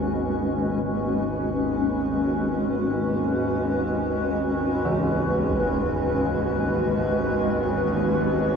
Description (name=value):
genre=dark ambient drone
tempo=free time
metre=none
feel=none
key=G# minor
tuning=A4 = 440 Hz
part: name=granular cloud pad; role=sustained chords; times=0.0-8.6 s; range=G#3 to B4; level=-23 LUFS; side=equal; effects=built-in reverb, shimmer reverb
part: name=bowed-like drone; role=drone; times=0.0-8.6 s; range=G#1 to D#2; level=-28 LUFS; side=equal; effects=built-in reverb
part: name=carillon bells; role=arpeggios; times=4.8-8.6 s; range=C#3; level=-31 LUFS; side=equal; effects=diffuse ambient delay
part: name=impact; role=percussion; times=5.5-5.7 s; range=none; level=-38 LUFS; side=left 1 dB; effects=none
room=wet huge ambient reverb, RT60 7.7 s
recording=worn, warbling old tape, cassette tape, warbly pitch drift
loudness=-22 LUFS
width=side -6 dB against mid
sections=0.1-8.6 A section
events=none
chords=0.1 G#m